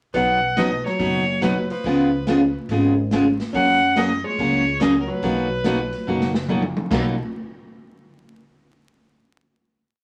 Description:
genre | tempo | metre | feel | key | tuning
country, western swing | 142 BPM | 4/4 | swing 67% on 8ths | B major | A4 = 444 Hz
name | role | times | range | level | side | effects
rich fiddle | melody | 0.1-6.5 s | A#4 to F#5 | -25 LUFS | equal | none
archtop guitar, miked and amplified | second line | 0.1-6.5 s | E#3 to C#4 | -30 LUFS | equal | none
picked steel-string acoustic guitar | accompaniment | 0.1-7.1 s | B2 to G#4 | -23 LUFS | equal | none
upright bass | bass | 0.1-7.2 s | F#1 to F#2 | -31 LUFS | equal | none
swinging big-band drum kit | drums | 0.1-7.0 s | crash cymbal, hi-hat, kick drum, snare drum, toms | -30 LUFS | equal | none
room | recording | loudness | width
wet studio ambience, RT60 0.5 s | vinyl crackle | -20 LUFS | mono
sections
0.1-6.9 A section; 6.9-8.6 final chord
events
drum fill 6.1-6.9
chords
0.1 B; 1.8 C#7; 3.5 F#add9; 5.2 Bmaj7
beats
| 0.15 0.57 1.00 1.42 | 1.84 2.27 2.69 3.12 | 3.54 3.96 4.39 4.81 | 5.23 5.65 6.07 6.49 | 6.91

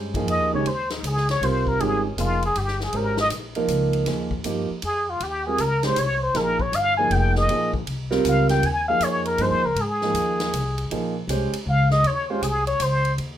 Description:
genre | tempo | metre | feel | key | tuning
modal jazz | 158 BPM | 3/4 | swing 65% on 8ths | Eb mixolydian | A4 = 440 Hz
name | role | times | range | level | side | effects
warm grand piano | accompaniment | 0.0-12.4 s | Eb3 to C5 | -25 LUFS | right 4 dB | none
upright bass | bass | 0.0-13.4 s | F1 to Ab2 | -26 LUFS | left 1 dB | none
swinging big-band drum kit | drums | 0.1-13.3 s | hi-hat, kick drum, ride cymbal, snare drum | -32 LUFS | left 2 dB | none
trumpet with plunger mute | melody | 0.3-13.1 s | Db4 to Ab5 | -22 LUFS | left 1 dB | none
room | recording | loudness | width
light reverb | minimal, uncompressed stereo recording | -20 LUFS | side -11 dB against mid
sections
0.0-13.2 A section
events
muted trumpet solo 0.0-13.2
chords
0.0 Eb13sus4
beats
0.28 | 0.66 1.04 1.42 | 1.80 2.18 2.56 | 2.94 3.32 3.70 | 4.08 4.46 4.84 | 5.21 5.59 5.97 | 6.36 6.74 7.11 | 7.49 7.87 8.25 | 8.63 9.01 9.39 | 9.77 10.15 10.53 | 10.91 11.29 11.67 | 12.05 12.43 12.81 | 13.19

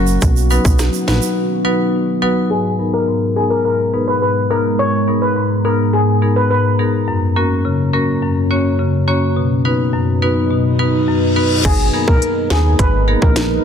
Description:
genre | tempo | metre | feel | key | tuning
dancehall | 105 BPM | 4/4 | straight | G# minor | A4 = 440 Hz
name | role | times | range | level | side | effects
concert harp | second line | 0.0-2.0 s | none | barely audible | none | none
marimba with medium hard mallets | accompaniment | 0.0-13.2 s | F#2 to C#5 | -16 LUFS | left 2 dB | sidechain pumping, low-pass filter
deep dark ambient pad | sustained chords | 0.0-13.6 s | F#2 to A#5 | -21 LUFS | right 2 dB | chorus, built-in reverb, sidechain pumping, low-pass filter
plucky analog bass | bass | 0.0-1.2, 11.6-13.6 s | F#1 to D#2 | -16 LUFS | right 1 dB | none
egg shaker | percussion | 0.1-1.4 s | none | -27 LUFS | right 17 dB | none
island pop drum kit | drums | 0.2-1.2, 11.6-13.5 s | crash cymbal, hi-hat, kick drum, rim click, snare drum | -16 LUFS | equal | overdrive
steel pan | melody | 2.5-6.9, 11.6-13.3 s | G#4 to C#5 | -18 LUFS | left 2 dB | low-pass filter
reverse cymbal | sound effects | 11.0-11.6 s | none | -24 LUFS | left 4 dB | none
room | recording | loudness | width
light reverb, small room ambience | dense, heavily limited modern master | -13 LUFS | side -8 dB against mid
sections
0.0-2.5 A section; 2.5-11.6 B section; 11.6-13.6 A section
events
break 1.4-2.5; filter sweep 2.5-11.6; reverse cymbal 11.0-11.6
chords
0.2 B; 2.5 G#madd9; 7.1 F#; 9.4 B; 11.6 G#madd9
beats
| 0.22 0.79 1.36 1.93 | 2.51 3.08 3.65 4.22 | 4.79 5.36 5.93 6.51 | 7.08 7.65 8.22 8.79 | 9.36 9.93 10.51 11.08 | 11.65 12.22 12.79 13.36

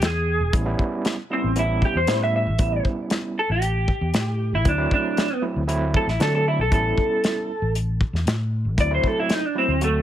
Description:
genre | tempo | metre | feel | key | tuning
straight-eighth soul blues | 116 BPM | 4/4 | straight | unclear | A4 = 440 Hz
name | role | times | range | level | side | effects
electric guitar through a small old amp | melody | 0.0-10.0 s | A3 to E5 | -23 LUFS | right 1 dB | analog chorus
fingered electric bass | bass | 0.0-10.0 s | E1 to D3 | -23 LUFS | equal | none
warm soul drum kit | drums | 0.0-9.9 s | hi-hat, kick drum, snare drum | -23 LUFS | left 1 dB | none
overdriven tine electric piano | accompaniment | 0.5-10.0 s | F#3 to F#4 | -27 LUFS | right 3 dB | fast tremolo
room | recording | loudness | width
little or no reverb | none | -20 LUFS | side -11 dB against mid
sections
0.5-10.0 A section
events
clean electric guitar solo 0.5-10.0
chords
0.0 E; 0.5 A9; 4.7 D9; 6.7 A9; 8.8 D9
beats
0.02 | 0.54 1.05 1.56 2.08 | 2.60 3.11 3.62 4.14 | 4.66 5.17 5.68 6.20 | 6.71 7.23 7.74 8.26 | 8.77 9.29 9.80

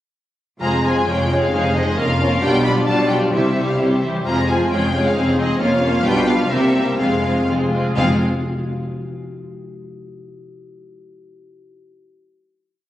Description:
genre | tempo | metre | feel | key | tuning
quick classical-period movement for symphony orchestra | 118-138 BPM | 2/4 | rubato | F minor | A4 = 440 Hz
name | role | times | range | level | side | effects
rich studio violin section | melody | 0.6-8.2 s | Db5 to B5 | -25 LUFS | left 2 dB | none
rich studio violin section | second line | 0.6-8.2 s | F4 to D5 | -24 LUFS | left 1 dB | none
rich studio viola section | accompaniment | 0.6-8.2 s | F3 to F4 | -22 LUFS | equal | none
warm studio cello section | bass | 0.6-8.2 s | F2 to E3 | -22 LUFS | right 1 dB | none
warm symphonic double bass section | bass | 0.6-8.2 s | F1 to C2 | -24 LUFS | equal | none
mellow French horn section | sustained chords | 0.9-8.2 s | F3 to D4 | -24 LUFS | left 2 dB | none
timpani | percussion | 3.3-4.0, 8.0-8.2 s | F2 to C3 | -27 LUFS | left 1 dB | none
room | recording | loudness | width
moderate scoring stage reverb, RT60 2.0 s | recorded on a phone in the room, studio reverb | -16 LUFS | side -13 dB against mid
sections
0.6-8.0 theme; 8.0-8.9 final chord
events
none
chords
0.6 Fm; 1.1 Db/F; 1.5 Ab/F; 2.0 Bbm/F; 2.4 G7/B; 3.3 C; 4.3 Fm; 4.7 Db/F; 5.2 Ab/F; 5.6 Bbm/F; 6.0 G7/B; 6.5 C7; 7.0 Fm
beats
| 0.61 1.07 | 1.52 1.98 | 2.42 2.87 | 3.32 3.79 | 4.25 4.71 | 5.15 5.59 | 6.03 6.48 | 6.96 7.46 | 7.96

